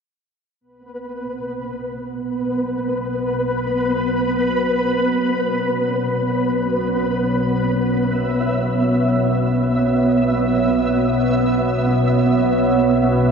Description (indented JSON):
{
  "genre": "ambient",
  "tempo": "free time",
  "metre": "none",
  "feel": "none",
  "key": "unclear",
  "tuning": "A4 = 440 Hz",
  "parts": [
    { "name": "deep dark ambient pad", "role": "sustained chords", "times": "1.5-13.3 s", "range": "B3 to C#5", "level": "-19 LUFS", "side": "right 1 dB", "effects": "chorus, built-in reverb" },
    { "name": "organ-like drone", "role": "drone", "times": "1.5-13.3 s", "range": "B1 to B2", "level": "-24 LUFS", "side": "left 2 dB", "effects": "ensemble chorus, built-in reverb" },
    { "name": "flickering grainy texture", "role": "texture", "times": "0.6-13.3 s", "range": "B3 to E5", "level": "-22 LUFS", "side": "equal", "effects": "built-in reverb" }
  ],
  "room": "wet huge ambient reverb, RT60 8.0 s",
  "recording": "none",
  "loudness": "-17 LUFS",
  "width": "side -6 dB against mid",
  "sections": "0.6-13.3 A section",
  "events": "fade-in on synth drone 0.6-13.3",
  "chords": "0.6 B5"
}